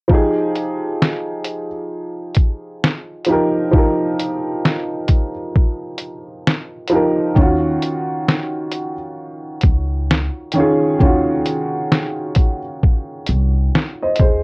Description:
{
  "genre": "lo-fi hip hop",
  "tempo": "66 BPM",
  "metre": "4/4",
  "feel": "swing 60% on 16ths",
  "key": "unclear",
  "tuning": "A4 = 442 Hz",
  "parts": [
    { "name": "dark upright piano", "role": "accompaniment", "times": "0.1-14.4 s", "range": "Eb3 to Eb5", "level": "-19 LUFS", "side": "equal", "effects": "low-pass filter" },
    { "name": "lo-fi sampler-style drum kit", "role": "drums", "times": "0.1-14.4 s", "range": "hi-hat, kick drum, snare drum", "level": "-15 LUFS", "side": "equal", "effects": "none" },
    { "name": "upright bass", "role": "bass", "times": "7.4-14.4 s", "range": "C2 to Eb2", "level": "-19 LUFS", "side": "equal", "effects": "none" }
  ],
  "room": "light reverb",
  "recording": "worn, warbling old tape, cassette tape, warbly pitch drift",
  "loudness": "-15 LUFS",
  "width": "side -30 dB against mid",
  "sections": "0.1-14.4 A section",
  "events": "none",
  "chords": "0.1 Fm9; 7.4 Ebm9",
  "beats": "| 0.10 1.00 1.91 2.82 | 3.73 4.64 5.55 6.46 | 7.37 8.28 9.19 10.10 | 11.01 11.91 12.82 13.73"
}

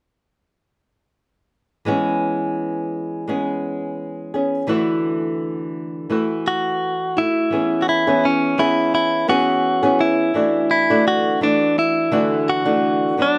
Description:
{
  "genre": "acoustic pop",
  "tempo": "85 BPM",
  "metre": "4/4",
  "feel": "swing 55% on 16ths",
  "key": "unclear",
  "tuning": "A4 = 441 Hz",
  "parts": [
    { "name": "flamenco guitar", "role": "accompaniment", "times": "1.9-13.4 s", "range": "D3 to G#4", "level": "-22 LUFS", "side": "equal", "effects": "none" },
    { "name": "direct-recorded clean electric guitar", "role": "melody", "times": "6.5-13.4 s", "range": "C#4 to F#4", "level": "-20 LUFS", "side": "equal", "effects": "none" }
  ],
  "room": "light reverb",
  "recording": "close, detailed microphones",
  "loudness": "-19 LUFS",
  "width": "mono",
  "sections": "1.9-7.5 A section; 7.5-13.4 B section",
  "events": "none",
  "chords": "1.9 E6; 4.7 Dadd9; 7.5 E6; 10.3 Dadd9",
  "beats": "| 1.86 2.57 3.28 3.98 | 4.69 5.40 6.11 6.81 | 7.52 8.23 8.93 9.64 | 10.34 11.05 11.76 12.46 | 13.16"
}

